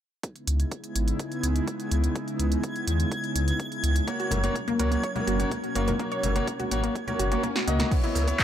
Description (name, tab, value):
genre	progressive house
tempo	125 BPM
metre	4/4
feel	straight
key	C# dorian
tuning	A4 = 445 Hz
part	airy breathy pad	sustained chords	0.2-7.9 s	C#3 to E4	-32 LUFS	equal	chorus, sidechain pumping
part	deep house drum kit	drums	0.2-8.4 s	crash cymbal, handclaps, hi-hat, shaker, snare drum	-32 LUFS	right 1 dB	sidechain pumping on hats, sidechain pumping on cymbals, sidechain pumping on perc
part	electronic kick drum	drums	0.2-8.4 s	none	-30 LUFS	equal	high-pass filter on kick
part	backwards swelling texture	texture	0.9-7.9 s	G#6	-36 LUFS	right 1 dB	built-in reverb, sidechain pumping
part	dark detuned saw bass	bass	0.5-8.3 s	F#1 to D#2	-26 LUFS	equal	sidechain pumping
part	wide unison pluck	arpeggios	4.1-8.1 s	A#3 to A#5	-31 LUFS	equal	sidechain pumping, digital delay
part	clear concert grand piano	stabs	4.1-8.4 s	A#3 to D#5	-30 LUFS	left 1 dB	sidechain pumping, digital delay
part	congas and cowbell	percussion	4.3-8.2 s	none	-36 LUFS	left 3 dB	sidechain pumping on perc
part	swell	sound effects	7.2-7.9 s	none	-38 LUFS	right 4 dB	none
room	light reverb, digital ambience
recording	dark, warm production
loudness	-24 LUFS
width	side -10 dB against mid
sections	0.2-7.9 A section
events	filter sweep on detuned saw bass 0.2-7.9; swell 7.2-7.9; drum fill 7.6-7.9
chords	0.2 C#m7; 4.1 F#; 7.9 C#m7